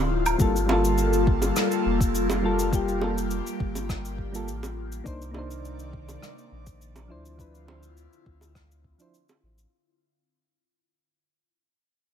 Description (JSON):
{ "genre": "sunset chillout", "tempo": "103 BPM", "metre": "4/4", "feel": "straight", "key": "unclear", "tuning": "A4 = 440 Hz", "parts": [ { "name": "airy breathy pad", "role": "sustained chords", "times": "0.0-9.7 s", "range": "C3 to D5", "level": "-28 LUFS", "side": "left 2 dB", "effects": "chorus, phaser" }, { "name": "warm sub bass", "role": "bass", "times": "0.0-9.7 s", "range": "D1 to D2", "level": "-30 LUFS", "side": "equal", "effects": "none" }, { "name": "soft brush drum kit", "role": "drums", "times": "0.3-9.7 s", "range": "cabasa, hi-hat, rim click, woodblock", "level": "-31 LUFS", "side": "equal", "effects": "none" }, { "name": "soft electric-piano-like synth keys", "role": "accompaniment", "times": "0.4-9.2 s", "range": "F3 to C5", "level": "-29 LUFS", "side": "moving between left 3 dB and right 6 dB", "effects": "chorus, auto-pan, vintage 12-bit sampler grit, digital delay" }, { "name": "electronic kick drum", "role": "drums", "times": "0.4-9.0 s", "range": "none", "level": "-25 LUFS", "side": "equal", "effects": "overdrive" }, { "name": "bongos", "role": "percussion", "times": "0.7-9.4 s", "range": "none", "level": "-31 LUFS", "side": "right 4 dB", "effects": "none" } ], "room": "light reverb, small room ambience", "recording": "none", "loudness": "-22 LUFS", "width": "side -8 dB against mid", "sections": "0.0-9.7 A section", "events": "fade-out 0.0-9.7", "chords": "0.4 Gm9; 5.1 Cm9; 7.1 Dm9" }